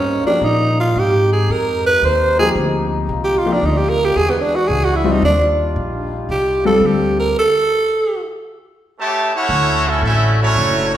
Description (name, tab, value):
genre	jazz, big band swing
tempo	112 BPM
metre	4/4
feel	swing 68% on 8ths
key	unclear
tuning	A4 = 439 Hz
part	growling tenor saxophone	melody	0.0-8.2 s	B3 to C5	-16 LUFS	right 2 dB	none
part	warm trombone section	sustained chords	0.0-11.0 s	Db3 to G4	-26 LUFS	left 2 dB	none
part	upright bass	bass	0.0-11.0 s	F#1 to Bb2	-20 LUFS	equal	none
part	warm baby grand piano	accompaniment	0.3-7.3 s	F3 to C5	-20 LUFS	left 4 dB	none
part	brilliant trumpet section	melody	9.0-11.0 s	A3 to A5	-17 LUFS	right 1 dB	none
part	muted trombone section	second line	9.0-11.0 s	C#3 to Gb4	-21 LUFS	right 2 dB	none
room	wet recital hall reverb, RT60 1.4 s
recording	recorded in a church or concert hall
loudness	-14 LUFS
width	side -11 dB against mid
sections	0.0-9.5 A section; 9.5-11.0 B section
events	tenor saxophone solo 0.0-9.5; stop 7.4-9.5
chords	0.0 Eb7; 1.0 Abmaj7; 3.1 Fm7; 4.2 E9; 5.2 Ebmaj9; 7.4 N.C.; 8.4 A7; 9.5 Dmaj9